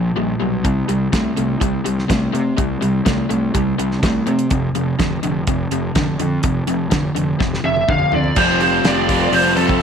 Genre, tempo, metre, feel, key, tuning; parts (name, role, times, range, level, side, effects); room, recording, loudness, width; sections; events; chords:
classic rock; 124 BPM; 4/4; straight; A4 = 441 Hz
cranked stack guitar; riff; 0.0-9.8 s; F2 to F4; -22 LUFS; right 10 dB; overdrive
overdriven electric guitar; riff; 0.0-9.8 s; F2 to A3; -21 LUFS; left 10 dB
fuzz fingered electric bass; bass; 0.0-9.8 s; F1 to C3; -22 LUFS; equal; overdrive
damped 70s drum kit; drums; 0.6-9.8 s; crash cymbal, hi-hat, kick drum, snare drum, toms; -21 LUFS; right 1 dB
lead guitar through a small cranked amp; melody; 7.7-9.8 s; A4 to F5; -17 LUFS; right 1 dB; overdrive, slapback echo
picked plugged-in twelve-string acoustic guitar; accompaniment; 8.4-9.8 s; F3 to G4; -27 LUFS; right 12 dB
soft string machine; sustained chords; 8.9-9.8 s; G3 to C5; -26 LUFS; right 1 dB
moderate plate reverb, RT60 1.4 s, small room ambience; 1960s-style stereo with parts hard left and right, faint mains hum; -15 LUFS; side -7 dB against mid
0.0-8.4 A section; 8.4-9.8 B section
drum fill 7.4-8.4
0.0 Bb5; 0.7 C5; 4.5 F5; 8.4 Fsus2